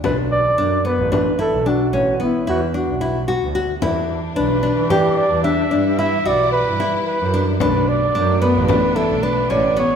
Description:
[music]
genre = contemporary instrumental, chamber music in an uneven meter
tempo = 111 BPM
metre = 7/4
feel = straight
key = B minor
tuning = A4 = 439 Hz
[part]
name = mellow flugelhorn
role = melody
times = 0.0-10.0 s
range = E4 to E5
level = -20 LUFS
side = right 2 dB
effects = none
[part]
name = nylon-string guitar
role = arpeggios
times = 0.0-10.0 s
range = B3 to G4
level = -20 LUFS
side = left 3 dB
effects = none
[part]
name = clear double bass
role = bass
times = 0.0-9.8 s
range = A1 to E3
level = -22 LUFS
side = right 3 dB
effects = none
[part]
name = frame drum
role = percussion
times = 0.0-9.8 s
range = none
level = -27 LUFS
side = left 5 dB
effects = none
[part]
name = bright studio string section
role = sustained chords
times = 3.8-10.0 s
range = E3 to E4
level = -28 LUFS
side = equal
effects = none
[sound]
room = wet concert hall reverb, RT60 1.7 s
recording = minimal, uncompressed stereo recording, faint mains hum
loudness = -16 LUFS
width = side -7 dB against mid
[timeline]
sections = 0.0-10.0 A section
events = none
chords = 0.0 Bm7; 3.8 Em7; 7.6 Bm7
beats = | 0.04 0.58 1.12 1.66 2.20 2.74 3.28 | 3.83 4.37 4.91 5.45 5.99 6.53 7.07 | 7.61 8.15 8.69 9.23 9.77

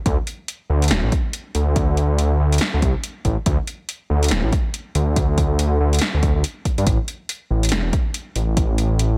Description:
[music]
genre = deep dubstep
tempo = 141 BPM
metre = 4/4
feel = swing 60% on 16ths, half-time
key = unclear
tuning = A4 = 440 Hz
[part]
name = dark detuned saw bass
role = bass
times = 0.1-9.2 s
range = D1 to G2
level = -20 LUFS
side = equal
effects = none
[part]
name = deep house drum kit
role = drums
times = 0.1-9.1 s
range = hi-hat, snare drum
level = -27 LUFS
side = equal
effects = overdrive
[part]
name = electronic kick drum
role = drums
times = 0.1-8.7 s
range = none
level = -23 LUFS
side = equal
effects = overdrive
[sound]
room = little or no reverb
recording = none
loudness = -20 LUFS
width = mono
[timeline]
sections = 0.0-9.2 A section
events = none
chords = none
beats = | 0.06 0.48 0.91 1.33 | 1.76 2.19 2.61 3.04 | 3.46 3.89 4.31 4.74 | 5.16 5.59 6.01 6.44 | 6.87 7.29 7.72 8.14 | 8.57 8.99

